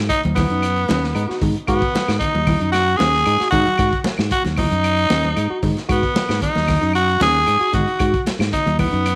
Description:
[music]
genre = afrobeat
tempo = 114 BPM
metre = 4/4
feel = straight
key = G# minor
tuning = A4 = 440 Hz
[part]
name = fingered electric bass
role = bass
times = 0.0-9.2 s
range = D#2 to G#2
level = -24 LUFS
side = equal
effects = none
[part]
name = raspy tenor saxophone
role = melody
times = 0.1-9.2 s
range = B3 to G#4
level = -21 LUFS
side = equal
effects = none
[part]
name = crunchy breakbeat drum kit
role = drums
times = 0.1-9.2 s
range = hi-hat, kick drum, snare drum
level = -27 LUFS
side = equal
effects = none
[part]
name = congas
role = percussion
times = 0.2-8.9 s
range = none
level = -27 LUFS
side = equal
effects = none
[part]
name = mellow tine electric piano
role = arpeggios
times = 0.4-9.1 s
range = C#4 to F#4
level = -28 LUFS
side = equal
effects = none
[part]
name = claves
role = percussion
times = 0.4-9.2 s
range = none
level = -36 LUFS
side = equal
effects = none
[sound]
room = moderate echo chamber reverb, RT60 1.3 s, small room ambience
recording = none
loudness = -18 LUFS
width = mono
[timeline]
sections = 0.0-9.2 A section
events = none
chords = 0.0 G#m7

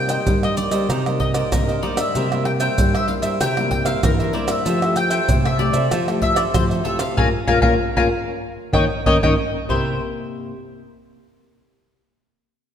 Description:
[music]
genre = samba and choro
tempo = 96 BPM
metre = 4/4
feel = straight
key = unclear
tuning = A4 = 440 Hz
[part]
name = mandolin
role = melody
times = 0.0-10.0 s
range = Bb4 to Bb5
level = -23 LUFS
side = left 2 dB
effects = none
[part]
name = nylon-string guitar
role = accompaniment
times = 0.0-10.5 s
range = G2 to G4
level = -25 LUFS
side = left 3 dB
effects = none
[part]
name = nylon-string guitar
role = bass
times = 0.0-10.0 s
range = Bb2 to G3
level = -24 LUFS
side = equal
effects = none
[part]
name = cavaquinho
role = accompaniment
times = 0.1-10.0 s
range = Eb4 to E5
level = -27 LUFS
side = right 4 dB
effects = none
[part]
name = maracas, pandeiro, surdo and tamborim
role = percussion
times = 0.1-9.8 s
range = none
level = -22 LUFS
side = right 1 dB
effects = none
[sound]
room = moderate concert hall reverb, RT60 2.0 s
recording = none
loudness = -17 LUFS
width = side -8 dB against mid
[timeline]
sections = 0.0-9.7 A section; 9.7-12.2 B section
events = band accent 7.2-9.7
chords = 0.0 Cm7; 2.2 C7; 4.7 Fmaj9; 7.2 Bbm7; 8.4 Eb7; 9.7 C7

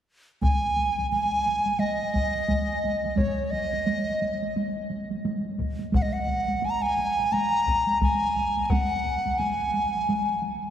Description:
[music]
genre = japanese traditional, taiko drum ensemble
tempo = 87 BPM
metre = 4/4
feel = swing 60% on 16ths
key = Ab suspended pentatonic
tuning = A4 = 440 Hz
[part]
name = bright large dizi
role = melody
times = 0.4-10.4 s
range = Db5 to Bb5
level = -25 LUFS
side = equal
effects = none
[part]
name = taiko ensemble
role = percussion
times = 0.4-10.6 s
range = none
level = -30 LUFS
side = right 2 dB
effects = none
[part]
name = taiko ensemble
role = percussion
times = 0.4-8.9 s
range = none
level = -29 LUFS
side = left 1 dB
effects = none
[sound]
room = wet cathedral reverb, RT60 4.5 s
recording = recorded in a church or concert hall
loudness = -23 LUFS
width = side -10 dB against mid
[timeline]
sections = 0.4-10.7 A section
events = none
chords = none

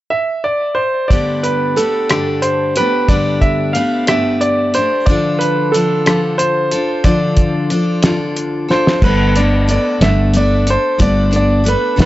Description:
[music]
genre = folk rock and heartland rock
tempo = 61 BPM (dotted quarters)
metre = 6/8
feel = straight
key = unclear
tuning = A4 = 439 Hz
[part]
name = clear concert grand piano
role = melody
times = 0.1-12.1 s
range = A4 to F5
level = -16 LUFS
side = right 1 dB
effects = tape echo
[part]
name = picked steel-string acoustic guitar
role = accompaniment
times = 1.1-12.1 s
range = G2 to A4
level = -17 LUFS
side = left 2 dB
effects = none
[part]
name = cloth-damped thuddy drum kit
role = drums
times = 1.1-12.1 s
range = crash cymbal, hi-hat, kick drum, rim click, snare drum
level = -16 LUFS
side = equal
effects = none
[part]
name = fingered electric bass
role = bass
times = 9.0-12.1 s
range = G1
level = -14 LUFS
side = equal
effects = none
[sound]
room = light reverb, small room ambience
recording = nothing above 7.8 kHz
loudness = -12 LUFS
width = side -15 dB against mid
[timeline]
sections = 0.0-1.1 A section; 1.1-9.0 B section; 9.0-12.1 C section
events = drum fill 8.7-9.0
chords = 0.0 N.C.; 1.1 Gadd9; 5.1 Dm; 9.0 Gadd9

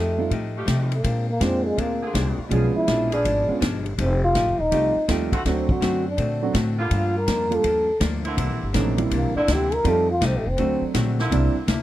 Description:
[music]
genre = jazz, big band swing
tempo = 164 BPM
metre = 4/4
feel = swing 64% on 8ths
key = F mixolydian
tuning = A4 = 440 Hz
[part]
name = trombone with cup mute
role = melody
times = 0.0-10.8 s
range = Ab3 to Bb4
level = -23 LUFS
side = equal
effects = none
[part]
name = archtop guitar, miked and amplified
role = accompaniment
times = 0.0-11.8 s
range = G2 to G4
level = -30 LUFS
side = left 4 dB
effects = none
[part]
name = upright bass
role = bass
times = 0.0-11.8 s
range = Eb1 to C3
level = -25 LUFS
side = equal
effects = none
[part]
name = warm concert grand piano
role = accompaniment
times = 0.2-11.5 s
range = F3 to A4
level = -26 LUFS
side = right 5 dB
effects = none
[part]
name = swinging big-band drum kit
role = drums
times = 0.3-11.8 s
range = hi-hat, kick drum, ride cymbal, snare drum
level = -28 LUFS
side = equal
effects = none
[part]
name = dark saxophone section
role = sustained chords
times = 0.5-11.7 s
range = D3 to G#4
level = -31 LUFS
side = right 1 dB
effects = none
[sound]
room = small room ambience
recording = dry, close 1970s-style studio recording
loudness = -20 LUFS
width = side -14 dB against mid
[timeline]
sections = 0.0-11.8 A section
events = trombone solo 0.0-11.8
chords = 0.0 F9; 1.0 Bb9; 2.5 Bdim7; 4.0 F9; 5.4 D7; 6.9 Gm7; 8.4 C9; 9.9 F9; 10.6 D7; 11.3 C9

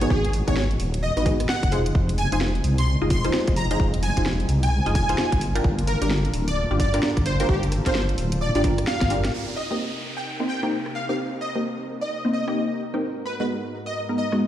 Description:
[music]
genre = UK garage, two-step garage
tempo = 130 BPM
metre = 4/4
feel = swing 62% on 16ths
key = C minor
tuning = A4 = 440 Hz
[part]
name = plucky unison lead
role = melody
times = 0.0-14.4 s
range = G4 to C6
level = -29 LUFS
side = equal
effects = ensemble chorus, tape echo
[part]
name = warm analog pad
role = sustained chords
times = 0.0-14.5 s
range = Ab2 to Bb4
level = -35 LUFS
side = left 1 dB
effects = chorus, sidechain pumping
[part]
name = punchy chord stab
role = stabs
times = 0.0-14.5 s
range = Ab3 to Eb5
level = -27 LUFS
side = equal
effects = chorus, phaser, tape echo
[part]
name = deep soft wobble bass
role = bass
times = 0.0-9.3 s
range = D1 to C2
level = -23 LUFS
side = equal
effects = chorus
[part]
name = garage drum kit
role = drums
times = 0.0-14.4 s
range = hi-hat, rim click, snare drum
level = -30 LUFS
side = equal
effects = overdrive
[part]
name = electronic kick drum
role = drums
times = 0.1-9.1 s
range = none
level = -22 LUFS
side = equal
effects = none
[part]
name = downlifter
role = sound effects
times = 9.3-13.0 s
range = none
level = -37 LUFS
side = right 1 dB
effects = none
[sound]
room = light reverb, digital ambience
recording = played on a big sound system in a bare room, stone room reverb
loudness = -21 LUFS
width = side -11 dB against mid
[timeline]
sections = 0.0-9.3 A section; 9.3-14.5 B section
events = drum fill 9.0-9.3; band accent 9.2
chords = 0.0 Abm7; 1.7 Fm7; 5.4 Gm7; 9.3 Cm7; 13.0 Abm7

